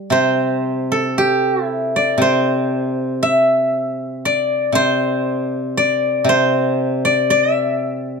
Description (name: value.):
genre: chinese traditional, Chinese solo plucked strings.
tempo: 59 BPM.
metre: 4/4.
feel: rubato.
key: C gong mode.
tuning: A4 = 439 Hz.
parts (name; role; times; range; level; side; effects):
steel-string zither; solo; 0.0-8.2 s; C3 to E5; -15 LUFS; equal; none.
room: moderate studio ambience, RT60 0.5 s.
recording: dark, warm production.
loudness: -15 LUFS.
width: side -5 dB against mid.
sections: 0.0-8.2 A section.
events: none.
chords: none.